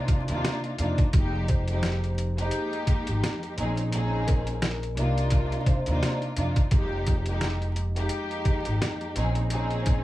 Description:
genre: hip hop, boom-bap hip-hop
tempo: 86 BPM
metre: 4/4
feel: swing 58% on 16ths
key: F minor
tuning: A4 = 439 Hz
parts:
  - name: dark studio string section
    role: accompaniment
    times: 0.0-10.0 s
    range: F2 to Ab4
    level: -29 LUFS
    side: equal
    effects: cassette tape
  - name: boom bap sampler-style drum kit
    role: drums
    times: 0.1-10.0 s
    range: hi-hat, kick drum, snare drum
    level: -25 LUFS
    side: equal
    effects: none
  - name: upright bass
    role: bass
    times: 0.3-10.0 s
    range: F1 to F2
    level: -28 LUFS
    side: equal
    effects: none
  - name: vibraphone with soft mallets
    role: melody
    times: 1.5-6.2 s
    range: Bb4 to C5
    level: -38 LUFS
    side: left 2 dB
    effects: analog delay
room: light reverb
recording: vinyl crackle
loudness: -24 LUFS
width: side -16 dB against mid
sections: 0.0-10.0 A section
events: none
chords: 0.0 Cm11; 1.1 Fm11; 3.6 Bbm11; 5.0 Cm11; 6.7 Fm11; 9.2 Bbm11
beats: 0.44 | 1.14 1.83 2.53 3.23 | 3.92 4.62 5.32 6.02 | 6.72 7.41 8.11 8.81 | 9.51

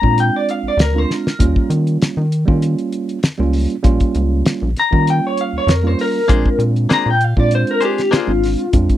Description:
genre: straight-eighth soul blues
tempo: 98 BPM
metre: 4/4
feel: straight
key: unclear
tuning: A4 = 439 Hz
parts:
  - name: electric guitar through a small old amp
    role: melody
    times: 0.0-8.7 s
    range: F4 to Bb5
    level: -18 LUFS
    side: left 2 dB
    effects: tremolo, slapback echo
  - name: tine electric piano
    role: accompaniment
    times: 0.0-9.0 s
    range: G3 to F4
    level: -20 LUFS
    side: right 5 dB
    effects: none
  - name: rubbery square bass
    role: bass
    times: 0.0-8.9 s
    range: Ab1 to Eb3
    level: -17 LUFS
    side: equal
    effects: none
  - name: cloth-damped thuddy drum kit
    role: drums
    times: 0.0-9.0 s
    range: hi-hat, kick drum, snare drum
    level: -16 LUFS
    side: equal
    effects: none
  - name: direct-recorded clean electric guitar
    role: stabs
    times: 6.3-8.3 s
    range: Bb3 to C5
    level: -21 LUFS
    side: left 6 dB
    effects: none
room: little or no reverb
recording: dry, close 1970s-style studio recording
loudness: -14 LUFS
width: side -12 dB against mid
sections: 0.0-9.0 A section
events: drum fill 1.1-1.4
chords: 0.0 Bb9; 1.4 Eb9; 6.3 Bb9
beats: 0.17 0.78 | 1.39 2.00 2.62 3.23 | 3.84 4.45 5.06 5.67 | 6.29 6.90 7.51 8.12 | 8.73

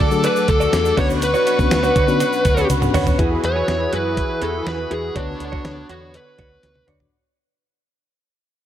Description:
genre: 1980s-style pop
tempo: 122 BPM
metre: 4/4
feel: straight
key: B dorian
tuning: A4 = 440 Hz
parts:
  - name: fuzz lead guitar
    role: melody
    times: 0.0-6.8 s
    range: D4 to C#5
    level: -22 LUFS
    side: equal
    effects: distortion
  - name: FM electric piano with tremolo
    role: accompaniment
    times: 0.0-7.1 s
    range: F#3 to D5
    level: -24 LUFS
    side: left 6 dB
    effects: none
  - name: overdriven electric guitar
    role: accompaniment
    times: 0.0-3.7 s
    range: B2 to D4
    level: -31 LUFS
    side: equal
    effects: analog chorus
  - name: brassy analog pad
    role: sustained chords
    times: 0.0-7.1 s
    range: D3 to D6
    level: -26 LUFS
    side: right 2 dB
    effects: chorus
  - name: direct-recorded clean electric guitar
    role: riff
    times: 0.0-7.0 s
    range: B3 to D5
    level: -27 LUFS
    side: right 5 dB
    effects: lush chorus
  - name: vintage muted fingered electric bass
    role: bass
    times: 0.0-7.1 s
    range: C#2 to D3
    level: -24 LUFS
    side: equal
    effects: none
  - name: tube shaker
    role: percussion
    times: 0.1-3.2 s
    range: none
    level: -38 LUFS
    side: right 9 dB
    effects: none
  - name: clean 12-bit digital drum machine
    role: drums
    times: 0.2-7.1 s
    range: hi-hat, kick drum, snare drum, tambourine, toms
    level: -21 LUFS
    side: equal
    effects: none
room: light reverb, digital ambience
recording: none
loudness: -16 LUFS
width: side -11 dB against mid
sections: 0.0-3.2 A section; 3.2-7.1 B section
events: drum fill 2.7-3.2, 6.6-7.1; fade-out 3.2-7.1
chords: 0.0 D; 1.0 Bmadd9/D; 3.2 Eadd9; 5.2 Bmadd9/D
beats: 0.24 0.73 | 1.22 1.71 2.21 2.70 | 3.19 3.68 4.17 4.66 | 5.16 5.65 6.14 6.63

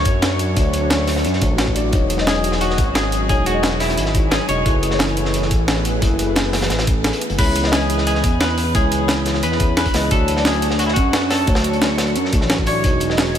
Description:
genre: liquid drum and bass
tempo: 176 BPM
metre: 4/4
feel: straight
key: C# minor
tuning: A4 = 440 Hz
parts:
  - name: semi-hollow electric guitar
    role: melody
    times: 0.0-13.4 s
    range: E4 to C#5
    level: -24 LUFS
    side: left 1 dB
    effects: wide subtle chorus, ping-pong delay
  - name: deep mellow chord stab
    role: accompaniment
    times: 0.0-13.4 s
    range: G#3 to D#5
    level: -24 LUFS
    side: left 1 dB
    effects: chorus, analog delay
  - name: lush unison pad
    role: sustained chords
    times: 0.0-13.4 s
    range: E3 to C#6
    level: -26 LUFS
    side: equal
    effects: chorus, sidechain pumping
  - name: smooth gliding synth bass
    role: bass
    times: 0.0-13.4 s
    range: E1 to F#2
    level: -21 LUFS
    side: equal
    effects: none
  - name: crunchy breakbeat drum kit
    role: drums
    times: 0.0-13.4 s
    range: hi-hat, snare drum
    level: -26 LUFS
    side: equal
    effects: high-pass filter on hats, high-pass filter on snare, high-pass filter on room
  - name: breakbeat sampler-style drum kit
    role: drums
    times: 0.1-13.4 s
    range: crash cymbal, hi-hat, snare drum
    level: -23 LUFS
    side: equal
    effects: none
  - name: electronic kick drum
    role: drums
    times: 0.1-12.9 s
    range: none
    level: -19 LUFS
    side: equal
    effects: none
room: moderate huge ambient reverb, RT60 4.4 s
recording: dreamy mix soaked in reverb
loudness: -15 LUFS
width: side -9 dB against mid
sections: 0.0-7.4 A section; 7.4-13.4 A section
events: drop 0.0-7.4, 7.4-13.4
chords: 0.0 Dmaj7; 1.9 Emaj13; 4.7 F#m11; 7.4 C#m7; 10.1 Dmaj7; 12.8 Emaj13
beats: 0.23 | 0.57 0.91 1.25 1.59 | 1.93 2.27 2.61 2.95 | 3.29 3.63 3.98 4.32 | 4.66 5.00 5.34 5.68 | 6.02 6.36 6.70 7.04 | 7.38 7.72 8.07 8.41 | 8.75 9.09 9.43 9.77 | 10.11 10.45 10.79 11.13 | 11.47 11.82 12.16 12.50 | 12.84 13.18

